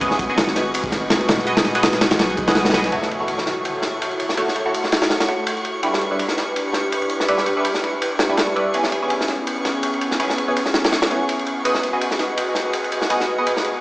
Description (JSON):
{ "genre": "drum and bass, jungle", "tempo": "165 BPM", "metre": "4/4", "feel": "swing 55% on 16ths", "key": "F# dorian", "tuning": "A4 = 440 Hz", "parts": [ { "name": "airy breathy pad", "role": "sustained chords", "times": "0.0-13.8 s", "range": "B3 to D#5", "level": "-24 LUFS", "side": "equal", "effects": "chorus, vintage 12-bit sampler grit" }, { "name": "band-passed chord stab", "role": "stabs", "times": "0.0-13.5 s", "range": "E3 to D#5", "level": "-24 LUFS", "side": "right 1 dB", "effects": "phaser, dub echo" }, { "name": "saturated sub bass", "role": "bass", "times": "0.0-2.9 s", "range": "D#1 to B1", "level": "-30 LUFS", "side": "equal", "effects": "none" }, { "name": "crunchy breakbeat drum kit", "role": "drums", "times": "0.0-13.7 s", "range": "kick drum, ride cymbal, snare drum", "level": "-21 LUFS", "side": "equal", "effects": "high-pass filter on kick, high-pass filter on cymbals, high-pass filter on snare, high-pass filter on room" }, { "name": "dusty soul sampler-style drum kit", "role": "drums", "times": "0.0-2.9 s", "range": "hi-hat, snare drum", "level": "-30 LUFS", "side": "equal", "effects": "none" }, { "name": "twinkling granular texture", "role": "texture", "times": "0.0-13.8 s", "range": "C#6", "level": "-30 LUFS", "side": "equal", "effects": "built-in reverb" }, { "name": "impact", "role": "sound effects", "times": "2.9-4.4 s", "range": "none", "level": "-39 LUFS", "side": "equal", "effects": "none" } ], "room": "moderate echo chamber reverb, RT60 1.7 s, small room reverb", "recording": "played on a big sound system in a bare room, large studio reverb, small speaker sound", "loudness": "-17 LUFS", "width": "side -21 dB against mid", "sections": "0.0-2.9 A section; 2.9-13.8 B section", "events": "drop 0.0-2.9; impact 2.9-4.4", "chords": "0.0 G#m7; 2.9 F#m7; 5.8 Em7; 8.7 C#m7; 11.6 G#m7" }